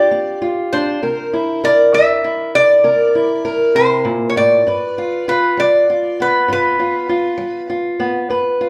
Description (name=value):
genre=acoustic country blues, solo or duo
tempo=66 BPM (dotted quarters)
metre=12/8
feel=straight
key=G mixolydian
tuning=A4 = 440 Hz
part: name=lap resonator guitar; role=melody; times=0.0-7.7 s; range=B4 to E5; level=-16 LUFS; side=equal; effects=none
part: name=fingerpicked old ladder-braced acoustic guitar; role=accompaniment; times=0.0-8.7 s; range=G2 to B4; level=-20 LUFS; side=equal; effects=none
room=wet large studio reverb, RT60 1.1 s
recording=band playing live in one room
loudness=-15 LUFS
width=mono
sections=0.0-8.7 A section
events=none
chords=0.0 G7; 1.0 C7; 4.7 G7